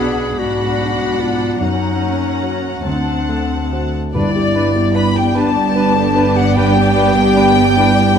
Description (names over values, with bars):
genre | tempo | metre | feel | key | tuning
cinematic, emotional film score for orchestra | 50 BPM (dotted quarters) | 6/8 | rubato | G major from 4.2 s | A4 = 440 Hz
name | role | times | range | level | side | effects
warm symphonic violin section | melody | 0.0-8.2 s | D5 to B5 | -21 LUFS | left 5 dB | none
dark symphonic violin section | second line | 0.0-8.2 s | G4 to F#5 | -24 LUFS | left 2 dB | none
warm clarinet | second line | 0.0-8.2 s | D4 to G#4 | -24 LUFS | left 3 dB | none
dark symphonic viola section | accompaniment | 0.0-8.2 s | B3 to D4 | -21 LUFS | right 1 dB | none
warm baby grand piano | accompaniment | 0.0-8.2 s | B1 to D5 | -20 LUFS | equal | none
rich studio cello section | bass | 0.0-8.2 s | D2 to B2 | -20 LUFS | right 4 dB | none
mellow cor anglais | second line | 4.1-8.2 s | B4 | -26 LUFS | right 2 dB | none
dark French horn section | sustained chords | 4.1-8.2 s | D4 to G4 | -20 LUFS | left 3 dB | none
warm symphonic double bass section | bass | 4.1-8.2 s | G1 | -22 LUFS | right 5 dB | none
timpani | percussion | 4.1-5.3 s | G2 | -25 LUFS | left 1 dB | none
bright silver concert flute | second line | 4.2-8.2 s | D5 to B5 | -21 LUFS | left 2 dB | none
room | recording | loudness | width
moderate scoring stage reverb, RT60 1.9 s | none | -13 LUFS | side -7 dB against mid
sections
0.0-4.2 A section; 4.2-8.2 A section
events
none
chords
0.0 Bm; 1.6 F#; 2.9 D7; 4.2 G